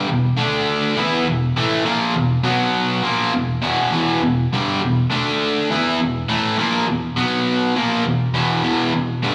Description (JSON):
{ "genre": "rock", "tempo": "102 BPM", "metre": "4/4", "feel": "straight", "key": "unclear", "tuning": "A4 = 439 Hz", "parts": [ { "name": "cranked stack guitar", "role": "solo", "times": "0.0-9.3 s", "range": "E2 to E4", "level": "-19 LUFS", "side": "equal", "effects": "overdrive, slapback echo" } ], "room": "light reverb, digital ambience", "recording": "live gig heard through the venue's PA, club reverb", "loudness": "-19 LUFS", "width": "mono", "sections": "0.0-9.3 A section", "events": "none", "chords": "0.4 D5; 1.0 E5; 2.4 B5; 3.0 E5; 5.1 D5; 5.7 E5; 7.2 B5; 7.7 E5" }